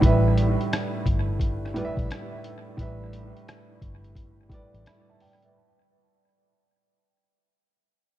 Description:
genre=lo-fi hip hop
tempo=87 BPM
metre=4/4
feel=swing 66% on 16ths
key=unclear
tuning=A4 = 438 Hz
part: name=warm upright piano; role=accompaniment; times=0.0-5.8 s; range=A2 to B5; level=-27 LUFS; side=right 2 dB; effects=cassette tape, low-pass filter, analog delay
part: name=warm French horn section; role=sustained chords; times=0.0-5.5 s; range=G3 to D4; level=-40 LUFS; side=left 2 dB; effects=low-pass filter
part: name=vintage muted fingered electric bass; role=bass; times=0.0-4.8 s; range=G1 to Bb1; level=-26 LUFS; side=equal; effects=none
part: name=lo-fi sampler-style drum kit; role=drums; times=0.0-5.5 s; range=hi-hat, kick drum, rim click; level=-26 LUFS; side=equal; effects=none
room=light reverb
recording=echo-heavy mix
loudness=-23 LUFS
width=side -14 dB against mid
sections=0.0-5.5 A section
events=fade-out 0.0-5.5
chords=0.0 A9sus4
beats=| 0.02 0.71 1.40 2.09 | 2.78 3.47 4.16 4.85

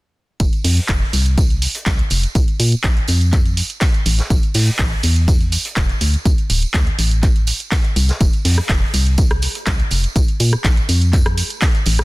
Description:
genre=piano house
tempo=123 BPM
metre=4/4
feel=straight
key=F major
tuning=A4 = 441 Hz
part: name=organ-like FM bass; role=bass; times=0.4-12.0 s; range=D1 to Bb2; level=-16 LUFS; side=equal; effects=sidechain pumping
part: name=electronic kick drum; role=drums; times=0.4-11.7 s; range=none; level=-16 LUFS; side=equal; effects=none
part: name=punchy analog drum machine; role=drums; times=0.4-12.0 s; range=handclaps, hi-hat, rim click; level=-22 LUFS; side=right 1 dB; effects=none
part: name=vintage drum kit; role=drums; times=0.4-12.0 s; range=hi-hat, snare drum, tambourine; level=-30 LUFS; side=equal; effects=sidechain pumping on hats, high-pass filter on hats, high-pass filter on snare, sidechain pumping on perc, high-pass filter on perc, high-pass filter on room
part: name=tambourine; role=percussion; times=0.4-12.0 s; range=none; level=-30 LUFS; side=right 7 dB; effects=none
room=small room ambience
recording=dense, heavily limited modern master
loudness=-14 LUFS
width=side -22 dB against mid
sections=0.4-12.0 A section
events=none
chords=none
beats=| 0.40 0.89 1.38 1.86 | 2.35 2.84 3.33 3.82 | 4.30 4.79 5.28 5.77 | 6.25 6.74 7.23 7.72 | 8.21 8.69 9.18 9.67 | 10.16 10.64 11.13 11.62

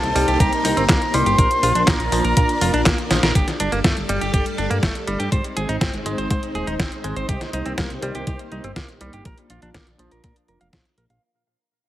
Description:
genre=italo disco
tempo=122 BPM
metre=4/4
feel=straight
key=unclear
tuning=A4 = 445 Hz
part: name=soft octave-layered synth lead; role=melody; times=0.0-3.1 s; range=A5 to C6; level=-21 LUFS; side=equal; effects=chorus, tape echo
part: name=string machine, full ensemble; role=sustained chords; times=0.0-11.2 s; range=G3 to D5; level=-27 LUFS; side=equal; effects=ensemble chorus
part: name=direct-recorded clean electric guitar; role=arpeggios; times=0.0-11.2 s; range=F3 to F5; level=-26 LUFS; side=right 2 dB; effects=low-pass filter, tape echo
part: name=chorused synth bass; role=bass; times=0.0-11.2 s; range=Eb1 to Bb2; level=-25 LUFS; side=equal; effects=none
part: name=detuned 8-bit digital drum machine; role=drums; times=0.0-11.2 s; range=handclaps, hi-hat, snare drum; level=-23 LUFS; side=equal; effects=none
part: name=electronic kick drum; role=drums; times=0.4-10.8 s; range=none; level=-22 LUFS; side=equal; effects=none
room=light reverb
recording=heavily compressed radio sound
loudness=-18 LUFS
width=side -14 dB against mid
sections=0.0-3.4 A section; 3.4-11.2 B section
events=drum fill 3.1; fade-out 3.4-11.2; filter sweep on string machine 3.4-11.2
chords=0.0 Cm7; 1.4 Bb; 3.4 Gsus2; 5.3 Ab; 7.3 Cm7; 9.3 Bb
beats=0.40 0.89 | 1.39 1.88 2.37 2.86 | 3.35 3.84 4.34 4.83 | 5.32 5.81 6.30 6.79 | 7.29 7.78 8.27 8.76 | 9.25 9.75 10.24 10.73

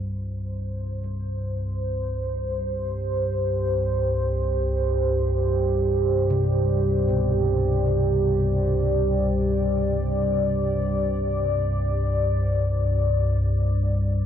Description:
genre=dark ambient drone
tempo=free time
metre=none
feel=none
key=unclear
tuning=A4 = 440 Hz
part: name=deep dark ambient pad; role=sustained chords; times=0.6-14.3 s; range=Eb4 to D5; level=-25 LUFS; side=right 1 dB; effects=chorus, built-in reverb
part: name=gamelan-type bossed gongs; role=arpeggios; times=0.0-13.3 s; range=G2 to F4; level=-32 LUFS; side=right 1 dB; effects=tape echo
part: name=analog drone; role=drone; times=0.0-14.3 s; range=C2 to G2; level=-24 LUFS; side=equal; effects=wide subtle chorus
room=moderate huge ambient reverb, RT60 8.1 s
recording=worn, warbling old tape, cassette tape, warbly pitch drift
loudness=-21 LUFS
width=side -9 dB against mid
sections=0.0-14.3 A section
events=filter sweep on synth drone 0.0-14.3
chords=0.0 Cm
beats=free time

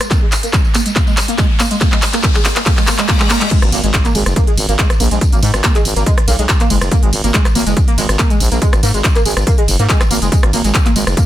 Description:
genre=driving peak-time techno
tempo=141 BPM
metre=4/4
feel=straight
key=G# minor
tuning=A4 = 439 Hz
part: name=techno drum kit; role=drums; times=0.0-11.3 s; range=crash cymbal, handclaps, hi-hat, ride cymbal, rim click, tambourine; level=-17 LUFS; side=equal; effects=sidechain pumping on hats, sidechain pumping on perc, sidechain pumping on cymbals
part: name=riser, reverse cymbal and impact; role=sound effects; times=0.0-5.2 s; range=none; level=-24 LUFS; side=left 1 dB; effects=none
part: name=overdriven synth lead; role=riff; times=0.1-11.2 s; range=G#3 to A#3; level=-19 LUFS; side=right 1 dB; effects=distortion, tube saturation, analog chorus, cassette tape, sidechain pumping, dub echo
part: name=electronic kick drum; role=drums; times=0.1-11.3 s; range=none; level=-14 LUFS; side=equal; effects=none
part: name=growling FM bass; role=bass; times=3.6-11.1 s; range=F#1 to G#2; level=-16 LUFS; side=equal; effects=sidechain pumping
room=digital ambience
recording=dense, heavily limited modern master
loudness=-11 LUFS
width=side -13 dB against mid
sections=0.0-3.5 A section; 3.5-11.3 B section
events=build-up 0.0-3.5; drum fill 0.0-3.5; riser 0.0-3.5; filter sweep on analog synth lead 0.0-3.5; reverse cymbal 2.7-3.5; drop 3.5-11.3; impact 3.5-5.2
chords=0.0 G#sus2; 3.5 N.C.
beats=| 0.11 0.53 0.96 1.38 | 1.81 2.23 2.66 3.09 | 3.51 3.94 4.36 4.79 | 5.21 5.64 6.06 6.49 | 6.92 7.34 7.77 8.19 | 8.62 9.04 9.47 9.89 | 10.32 10.74 11.17

